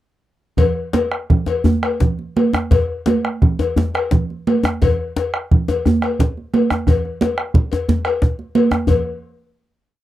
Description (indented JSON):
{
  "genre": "west african traditional, West African drum ensemble",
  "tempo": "112-124 BPM (dotted quarters)",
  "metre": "12/8",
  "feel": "straight",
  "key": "none",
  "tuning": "none",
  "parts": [
    { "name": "bombo", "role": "percussion", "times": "0.6-9.0 s", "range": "none", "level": "-17 LUFS", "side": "right 1 dB", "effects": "none" },
    { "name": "congas", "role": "percussion", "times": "0.6-9.0 s", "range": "none", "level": "-20 LUFS", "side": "right 4 dB", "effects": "none" },
    { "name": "cowbell", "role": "percussion", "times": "0.6-9.0 s", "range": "none", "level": "-22 LUFS", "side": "left 6 dB", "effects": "none" },
    { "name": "djembe", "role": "percussion", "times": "0.6-9.0 s", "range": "none", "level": "-20 LUFS", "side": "left 2 dB", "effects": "none" }
  ],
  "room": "light reverb",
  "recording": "dry, close 1970s-style studio recording",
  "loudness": "-15 LUFS",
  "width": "side -14 dB against mid",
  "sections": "0.6-8.9 A section; 8.9-10.0 final hit",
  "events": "speeding up 0.6-10.0",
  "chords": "none"
}